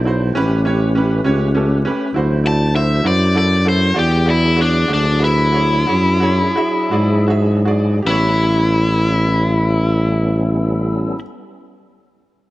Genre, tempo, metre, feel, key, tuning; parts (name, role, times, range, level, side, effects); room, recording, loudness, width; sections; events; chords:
slow blues; 51-67 BPM (dotted quarters); 12/8; straight; A mixolydian; A4 = 440 Hz
tonewheel organ; sustained chords; 0.0-11.2 s; F#3 to C5; -26 LUFS; equal; slow rotary speaker, overdrive, chorus vibrato
warm tuba; bass; 0.0-11.2 s; A1 to G#2; -16 LUFS; equal
bright upright piano; accompaniment; 0.1-11.2 s; C#4 to E5; -22 LUFS; right 2 dB; analog delay
overdriven electric guitar; melody; 2.5-11.2 s; D4 to A5; -18 LUFS; left 1 dB
light reverb, small room ambience; echo-heavy mix; -13 LUFS; side -17 dB against mid
0.0-8.0 A section; 8.0-12.5 B section
slowing down 2.7-8.0
0.3 A9; 2.1 D9; 3.9 E9; 8.0 A9